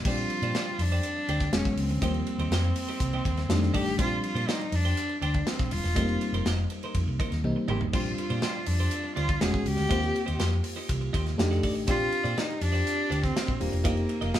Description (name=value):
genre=polished 1980s jazz-funk pop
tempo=122 BPM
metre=4/4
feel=straight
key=Bb major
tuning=A4 = 440 Hz
part: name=FM electric piano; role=accompaniment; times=0.0-14.4 s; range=Eb3 to G4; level=-32 LUFS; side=left 1 dB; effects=chorus
part: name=modern studio drum kit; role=drums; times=0.0-14.4 s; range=crash cymbal, hi-hat, kick drum, ride cymbal, snare drum, toms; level=-31 LUFS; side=equal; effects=none
part: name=rich cello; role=melody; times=0.1-14.4 s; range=Bb3 to G#4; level=-32 LUFS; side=equal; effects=none
part: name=twelve-string electric guitar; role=riff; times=0.1-14.4 s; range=D4 to Eb5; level=-37 LUFS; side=right 3 dB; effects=none
part: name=hollow-body short-scale fingered electric bass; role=bass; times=0.1-14.4 s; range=Eb1 to Bb2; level=-29 LUFS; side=equal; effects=none
room=moderate studio reverb, RT60 0.7 s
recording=band playing live in one room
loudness=-25 LUFS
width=side -11 dB against mid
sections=0.0-14.4 A section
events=drum fill 7.4-7.9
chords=0.0 Bb69; 1.5 E6; 2.0 Eb6; 3.5 F13; 4.0 Bb69; 6.0 F7sus4; 7.9 Bb69; 9.4 E6; 9.9 Eb6; 11.4 F13; 11.9 Bb69; 13.8 F7sus4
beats=| 0.05 0.54 1.03 1.53 | 2.02 2.51 3.01 3.50 | 3.99 4.48 4.98 5.47 | 5.96 6.46 6.95 7.44 | 7.93 8.43 8.92 9.41 | 9.91 10.40 10.89 11.38 | 11.88 12.37 12.86 13.35 | 13.85 14.34